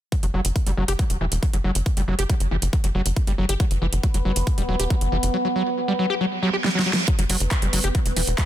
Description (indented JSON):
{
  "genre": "psychedelic trance",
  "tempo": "138 BPM",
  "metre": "4/4",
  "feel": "straight",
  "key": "unclear",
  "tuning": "A4 = 441 Hz",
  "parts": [
    { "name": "screaming distorted acid line", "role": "riff", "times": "0.1-8.4 s", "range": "E3 to G4", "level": "-26 LUFS", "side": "equal", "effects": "distortion, chorus, auto-pan, sidechain pumping, tape echo" },
    { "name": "big-room dance drum kit", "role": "drums", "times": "0.1-8.5 s", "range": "handclaps, hi-hat, snare drum", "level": "-27 LUFS", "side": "right 1 dB", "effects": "overdrive, studio ambience" },
    { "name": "electronic kick drum", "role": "drums", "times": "0.1-8.5 s", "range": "none", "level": "-22 LUFS", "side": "equal", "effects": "overdrive, studio ambience" },
    { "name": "tight sequencer bass", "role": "bass", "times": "0.2-8.3 s", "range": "E1 to G1", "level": "-23 LUFS", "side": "equal", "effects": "none" },
    { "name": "overtone-sweeping drone", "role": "sustained chords", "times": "3.9-8.5 s", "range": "B3 to B4", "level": "-28 LUFS", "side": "equal", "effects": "chorus, built-in reverb, sidechain pumping" },
    { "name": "reverse cymbal", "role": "sound effects", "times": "6.4-7.1 s", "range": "none", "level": "-29 LUFS", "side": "right 5 dB", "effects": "none" }
  ],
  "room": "little or no reverb",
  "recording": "dense, heavily limited modern master",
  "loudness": "-20 LUFS",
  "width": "side -12 dB against mid",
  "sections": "0.1-7.1 A section; 7.1-8.5 B section",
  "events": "filter sweep on acid bass 0.1-7.1; reverse cymbal 6.4-7.1; drum fill 6.6-7.1",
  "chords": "0.1 Esus2 (rootless)",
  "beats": "| 0.12 0.56 0.99 1.43 | 1.86 2.29 2.73 3.17 | 3.60 4.04 4.47 4.90 | 5.34 5.77 6.21 6.64 | 7.08 7.51 7.95 8.38"
}